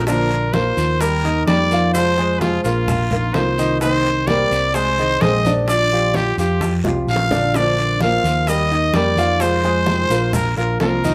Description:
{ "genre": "latin, Cuban son and guajira", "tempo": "129 BPM", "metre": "4/4", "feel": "straight", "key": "unclear", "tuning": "A4 = 440 Hz", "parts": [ { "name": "growling trumpet", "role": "melody", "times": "0.0-11.1 s", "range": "F4 to F5", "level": "-22 LUFS", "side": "equal", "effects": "plate reverb" }, { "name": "nylon-string guitar", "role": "accompaniment", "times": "0.0-11.1 s", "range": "C3 to Ab4", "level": "-27 LUFS", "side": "equal", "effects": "none" }, { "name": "picked electric bass", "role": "bass", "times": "0.0-11.1 s", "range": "Bb1 to F2", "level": "-24 LUFS", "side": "equal", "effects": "none" }, { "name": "warm grand piano", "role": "arpeggios", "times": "0.1-11.1 s", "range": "D3 to F5", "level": "-25 LUFS", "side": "equal", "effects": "none" }, { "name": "bongos", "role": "percussion", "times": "0.1-11.0 s", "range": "none", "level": "-30 LUFS", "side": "equal", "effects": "none" }, { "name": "congas", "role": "percussion", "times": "0.1-11.1 s", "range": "none", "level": "-28 LUFS", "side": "equal", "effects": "none" }, { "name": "guiro", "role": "percussion", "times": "0.1-11.1 s", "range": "none", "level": "-38 LUFS", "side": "equal", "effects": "none" }, { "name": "maracas", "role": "percussion", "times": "0.1-11.1 s", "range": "none", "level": "-39 LUFS", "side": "equal", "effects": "none" } ], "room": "moderate studio reverb, RT60 0.5 s", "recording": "none", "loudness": "-18 LUFS", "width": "mono", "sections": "0.1-11.1 A section", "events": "drum fill 6.6-7.5", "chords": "0.1 Bb; 1.0 Eb; 1.9 Fm; 2.9 Bbsus4; 3.8 Cm7; 4.7 Ab/C; 5.7 Bb6; 7.5 Bbadd9; 8.5 Eb; 9.4 Fm7; 10.3 Bb", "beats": "| 0.07 0.54 1.01 1.48 | 1.94 2.41 2.88 3.35 | 3.81 4.28 4.75 5.21 | 5.68 6.14 6.61 7.08 | 7.54 8.01 8.48 8.94 | 9.41 9.87 10.34 10.80" }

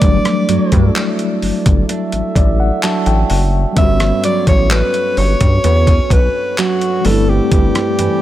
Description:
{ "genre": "contemporary R&B", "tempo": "64 BPM", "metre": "4/4", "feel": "straight", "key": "unclear", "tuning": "A4 = 440 Hz", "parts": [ { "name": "breathy alto saxophone", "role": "melody", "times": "0.0-8.2 s", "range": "F#4 to E5", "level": "-18 LUFS", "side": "equal", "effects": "digital delay" }, { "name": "mellow tine electric piano", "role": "accompaniment", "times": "0.0-8.2 s", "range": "F#3 to A5", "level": "-19 LUFS", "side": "left 2 dB", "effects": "medium stereo tremolo" }, { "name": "dark French horn section", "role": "sustained chords", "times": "0.0-8.2 s", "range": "A3 to E5", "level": "-25 LUFS", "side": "left 2 dB", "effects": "none" }, { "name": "nylon-string guitar", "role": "arpeggios", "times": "0.0-8.2 s", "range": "G2 to D4", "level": "-22 LUFS", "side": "right 7 dB", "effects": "none" }, { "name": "rubbery square bass", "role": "bass", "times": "0.0-8.1 s", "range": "F#1 to G2", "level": "-15 LUFS", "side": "equal", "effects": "none" }, { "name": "dusty soul sampler-style drum kit", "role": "drums", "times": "0.0-8.2 s", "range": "handclaps, hi-hat, kick drum, rim click", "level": "-16 LUFS", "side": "equal", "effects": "overdrive" } ], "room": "little or no reverb", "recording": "none", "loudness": "-11 LUFS", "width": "side -13 dB against mid", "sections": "0.0-8.2 A section", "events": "tine electric piano fill 1.9-3.8", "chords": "0.0 Em11/G; 3.8 A13/G; 7.0 D9sus4/G", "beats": "| 0.02 0.95 1.89 2.83 | 3.77 4.70 5.64 6.58 | 7.52" }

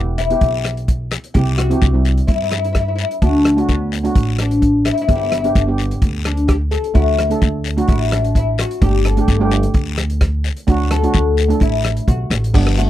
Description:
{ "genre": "calypso", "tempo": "129 BPM", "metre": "4/4", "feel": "straight", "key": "unclear", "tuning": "A4 = 436 Hz", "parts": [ { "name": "steel pan", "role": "accompaniment", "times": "0.0-12.8 s", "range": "G3 to A4", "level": "-22 LUFS", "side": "right 4 dB", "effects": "none" }, { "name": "upright bass", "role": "bass", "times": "0.0-12.9 s", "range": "E1 to G2", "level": "-18 LUFS", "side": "equal", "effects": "none" }, { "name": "oud", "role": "melody", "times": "0.2-12.9 s", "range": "A3 to A4", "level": "-19 LUFS", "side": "left 4 dB", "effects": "none" }, { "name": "warm soul drum kit", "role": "drums", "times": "0.2-12.9 s", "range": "crash cymbal, hi-hat, kick drum, rim click", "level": "-18 LUFS", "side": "equal", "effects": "none" }, { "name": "guiro", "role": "percussion", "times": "0.2-12.9 s", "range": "none", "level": "-28 LUFS", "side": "left 10 dB", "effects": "none" } ], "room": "little or no reverb", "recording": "none", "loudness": "-14 LUFS", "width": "side -13 dB against mid", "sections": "0.0-12.5 A section", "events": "oud solo 0.0-12.5", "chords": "0.0 Em; 1.3 C; 3.2 D; 5.1 G; 7.0 Dadd9; 8.8 Gsus2; 10.7 D", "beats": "0.41 0.88 | 1.35 1.82 2.28 2.75 | 3.22 3.69 4.15 4.62 | 5.09 5.55 6.02 6.49 | 6.95 7.42 7.88 8.35 | 8.82 9.28 9.75 10.21 | 10.68 11.14 11.61 12.07 | 12.54" }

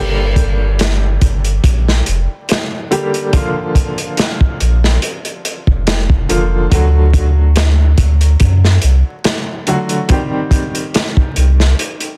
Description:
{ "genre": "trip hop", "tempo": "71 BPM", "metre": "4/4", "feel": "swing 54% on 16ths", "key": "G minor", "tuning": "A4 = 440 Hz", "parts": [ { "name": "clear upright piano", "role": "accompaniment", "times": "0.0-12.2 s", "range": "D3 to G4", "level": "-23 LUFS", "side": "equal", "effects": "tremolo, tape echo" }, { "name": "soft dub sub bass", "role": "bass", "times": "0.0-11.7 s", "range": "F1 to F#2", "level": "-14 LUFS", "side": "equal", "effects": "none" }, { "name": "crunchy breakbeat drum kit", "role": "drums", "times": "0.4-12.2 s", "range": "hi-hat, kick drum, snare drum", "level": "-18 LUFS", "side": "equal", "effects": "none" } ], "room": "small room ambience", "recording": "dense, heavily limited modern master, vinyl crackle", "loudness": "-14 LUFS", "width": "mono", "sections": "0.0-12.2 A section", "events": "none", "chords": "0.0 Gm; 3.3 Bb; 6.7 D; 10.1 Cm", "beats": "0.80 1.64 2.49 | 3.33 4.18 5.02 5.87 | 6.71 7.56 8.40 9.25 | 10.09 10.94 11.78" }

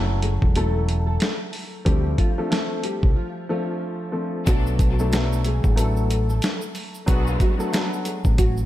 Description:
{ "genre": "hip hop, boom-bap hip-hop", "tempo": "92 BPM", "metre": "4/4", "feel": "swing 59% on 16ths", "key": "B dorian", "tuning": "A4 = 440 Hz", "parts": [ { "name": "nylon-string guitar", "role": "melody", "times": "0.0-8.7 s", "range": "F3 to A4", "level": "-31 LUFS", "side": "equal", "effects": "ensemble chorus, high-pass filter, low-pass filter, ping-pong delay" }, { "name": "dark baby grand piano", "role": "accompaniment", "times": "0.0-8.6 s", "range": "F3 to B4", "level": "-28 LUFS", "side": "left 1 dB", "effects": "cassette tape, high-pass filter, low-pass filter" }, { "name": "fingered electric bass", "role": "bass", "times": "0.0-8.7 s", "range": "E1 to D2", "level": "-22 LUFS", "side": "equal", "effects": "none" }, { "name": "dusty soul sampler-style drum kit", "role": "drums", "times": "0.2-8.6 s", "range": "hi-hat, kick drum, snare drum", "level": "-22 LUFS", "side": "equal", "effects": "none" }, { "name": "bright studio string section", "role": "stabs", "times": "4.5-7.5 s", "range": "D3 to A4", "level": "-34 LUFS", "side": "left 2 dB", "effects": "high-pass filter, low-pass filter, ping-pong delay" }, { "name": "tube shaker", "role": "percussion", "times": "4.5-8.7 s", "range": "none", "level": "-43 LUFS", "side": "right 5 dB", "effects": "none" } ], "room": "light reverb", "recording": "none", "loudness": "-20 LUFS", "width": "side -14 dB against mid", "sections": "0.0-4.5 A section; 4.5-8.7 B section", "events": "break 3.2-4.5", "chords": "0.0 F#m7; 1.9 Dm7; 4.5 Bm7", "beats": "0.56 1.21 | 1.86 2.51 3.17 3.82 | 4.47 5.12 5.78 6.43 | 7.08 7.73 8.38" }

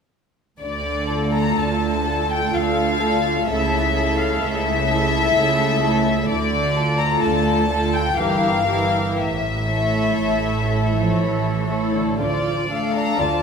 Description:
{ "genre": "classical, slow romantic movement for string orchestra", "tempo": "59-65 BPM", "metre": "3/4", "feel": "rubato", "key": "D minor", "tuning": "A4 = 436 Hz", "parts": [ { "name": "warm symphonic violin section", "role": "melody", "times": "0.6-13.4 s", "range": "D5 to Bb5", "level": "-22 LUFS", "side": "left 5 dB", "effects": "none" }, { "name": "rich studio cello section", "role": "bass", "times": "0.6-13.4 s", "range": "G2 to F3", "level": "-26 LUFS", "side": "right 3 dB", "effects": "none" }, { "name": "rich symphonic double bass section", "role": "bass", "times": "0.6-13.4 s", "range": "G1 to D2", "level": "-26 LUFS", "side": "right 3 dB", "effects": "none" }, { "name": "warm symphonic violin section", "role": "second line", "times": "1.1-13.4 s", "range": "F4 to F5", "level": "-26 LUFS", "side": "left 2 dB", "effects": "none" }, { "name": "dark symphonic viola section", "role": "accompaniment", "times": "1.1-13.4 s", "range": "E3 to F4", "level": "-24 LUFS", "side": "right 2 dB", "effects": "none" } ], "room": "moderate scoring stage reverb, RT60 1.9 s", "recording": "minimal, uncompressed stereo recording", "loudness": "-18 LUFS", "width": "side -6 dB against mid", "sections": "0.6-13.4 A section", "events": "none", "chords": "0.6 Dm; 3.5 A/C#; 6.3 Dm; 8.2 Edim/G; 9.2 A; 12.2 Dm", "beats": "| 0.60 1.57 2.53 | 3.48 4.43 5.35 | 6.29 7.23 8.17 | 9.17 10.19 11.20 | 12.21 13.20" }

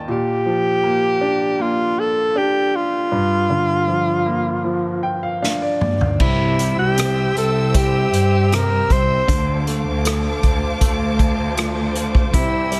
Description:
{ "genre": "pop ballad", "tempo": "79 BPM", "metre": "4/4", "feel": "straight", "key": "unclear", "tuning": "A4 = 440 Hz", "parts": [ { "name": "clear concert grand piano", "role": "accompaniment", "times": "0.0-12.8 s", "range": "G2 to A5", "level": "-25 LUFS", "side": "equal", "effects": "none" }, { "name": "breathy alto saxophone", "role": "melody", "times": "0.1-12.8 s", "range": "E4 to C5", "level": "-22 LUFS", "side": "equal", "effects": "none" }, { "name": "unplugged drum kit", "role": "drums", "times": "5.4-12.8 s", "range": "crash cymbal, hi-hat, kick drum, rim click, snare drum, toms", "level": "-22 LUFS", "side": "equal", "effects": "none" }, { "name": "warm studio string section", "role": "sustained chords", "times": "6.2-12.8 s", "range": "C5 to E6", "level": "-30 LUFS", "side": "equal", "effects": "none" }, { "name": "dark studio cello section", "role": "bass", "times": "6.2-12.8 s", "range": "C2 to G2", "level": "-23 LUFS", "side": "equal", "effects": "none" } ], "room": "light reverb, studio ambience", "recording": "none", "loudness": "-19 LUFS", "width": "mono", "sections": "0.0-6.2 A section; 6.2-12.8 B section", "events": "grand piano fill 4.6-6.2; drum fill 5.4-6.2", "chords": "0.1 Bb; 3.1 Gm7; 6.2 C; 9.3 Dm7", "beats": "| 0.08 0.84 1.59 2.35 | 3.12 3.88 4.64 5.42 | 6.21 6.98 7.75 8.52 | 9.29 10.05 10.81 11.57 | 12.33" }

